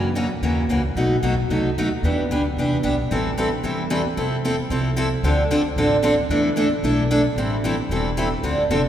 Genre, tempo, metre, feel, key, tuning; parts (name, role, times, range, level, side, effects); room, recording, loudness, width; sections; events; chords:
acoustic string swing (jazz manouche); 225 BPM; 4/4; swing 58% on 8ths; A minor from 3.1 s; A4 = 440 Hz
picked steel-string acoustic guitar; accompaniment; 0.0-8.8 s; B2 to A4; -20 LUFS; equal
upright bass; bass; 0.0-8.9 s; E1 to F#2; -24 LUFS; equal
wet cathedral reverb, RT60 4.2 s; recorded in a church or concert hall; -19 LUFS; side -10 dB against mid
0.0-3.1 A section; 3.1-8.9 B section
0.0 F#7; 1.0 B7; 2.0 Em7; 3.1 Am7; 4.2 Fmaj7; 5.2 Dm7; 6.3 E7sus4; 7.4 Am7